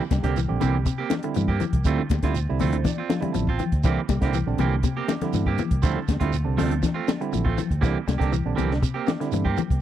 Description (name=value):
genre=afrobeat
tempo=120 BPM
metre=4/4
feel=straight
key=C mixolydian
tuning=A4 = 442 Hz
part: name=barky tine electric piano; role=accompaniment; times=0.0-9.5 s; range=D3 to A5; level=-30 LUFS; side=right 9 dB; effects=overdrive
part: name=semi-hollow electric guitar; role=arpeggios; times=0.0-9.7 s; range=C3 to G3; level=-30 LUFS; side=left 6 dB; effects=none
part: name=electric guitar at the edge of break-up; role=stabs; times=0.0-9.6 s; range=E3 to G4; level=-30 LUFS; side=right 8 dB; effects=spring reverb
part: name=fingered electric bass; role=bass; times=0.1-9.8 s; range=A1 to G2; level=-25 LUFS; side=equal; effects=none
part: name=compact cocktail drum kit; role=drums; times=0.1-9.8 s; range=hi-hat, kick drum, snare drum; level=-25 LUFS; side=equal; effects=none
part: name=congas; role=percussion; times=0.1-9.7 s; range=none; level=-31 LUFS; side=left 10 dB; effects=none
part: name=shekere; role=percussion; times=0.1-9.7 s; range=none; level=-34 LUFS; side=right 8 dB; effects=none
room=little or no reverb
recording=dry, close 1970s-style studio recording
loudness=-21 LUFS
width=side -11 dB against mid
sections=0.0-9.8 A section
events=tine electric piano fill 2.3-3.8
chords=0.0 C7; 1.9 Dm7; 3.8 C7; 5.8 Dm7; 7.8 C7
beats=0.36 0.86 1.36 | 1.85 2.35 2.85 3.34 | 3.84 4.34 4.84 5.33 | 5.83 6.33 6.83 7.33 | 7.83 8.32 8.82 9.32